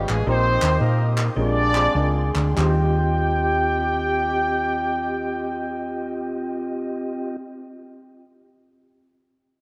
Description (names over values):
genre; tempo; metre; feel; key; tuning
uptempo gospel; 93-116 BPM; 4/4; swing 66% on 8ths; Eb major; A4 = 440 Hz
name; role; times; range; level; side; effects
mellow horn section; melody; 0.0-7.4 s; Ab3 to G5; -26 LUFS; equal; none
warm upright piano; accompaniment; 0.0-7.4 s; Eb2 to G5; -33 LUFS; equal; none
percussive tonewheel organ; sustained chords; 0.0-7.4 s; C4 to Eb6; -32 LUFS; equal; fast rotary speaker
hollow-body short-scale fingered electric bass; bass; 0.0-7.4 s; A1 to Bb2; -25 LUFS; equal; none
group handclap; percussion; 0.1-3.0 s; none; -33 LUFS; equal; none
room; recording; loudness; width
moderate lush hall reverb, RT60 2.7 s; rough home demo mix; -22 LUFS; mono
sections
0.0-2.6 A section; 2.6-7.7 B section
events
slowing down 0.0-2.6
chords
0.3 Eb/Bb; 1.4 Bb13; 2.6 Eb69